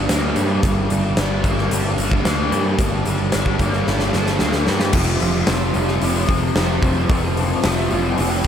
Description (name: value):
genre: rock, shoegaze and dream pop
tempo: 111 BPM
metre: 4/4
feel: straight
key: unclear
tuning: A4 = 440 Hz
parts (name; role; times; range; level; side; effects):
- fuzz guitar; riff; 0.0-8.5 s; F2 to D4; -20 LUFS; left 1 dB; distortion, lush chorus
- modern bright picked electric bass; bass; 0.0-8.5 s; F1 to G2; -22 LUFS; equal; none
- huge arena drum kit; drums; 0.1-8.5 s; crash cymbal, hi-hat, kick drum, snare drum; -20 LUFS; equal; none
room: little or no reverb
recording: none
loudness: -16 LUFS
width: side -8 dB against mid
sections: 0.0-4.9 A section; 4.9-8.5 B section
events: drum fill 3.9-4.9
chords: 0.0 Gm; 4.9 F5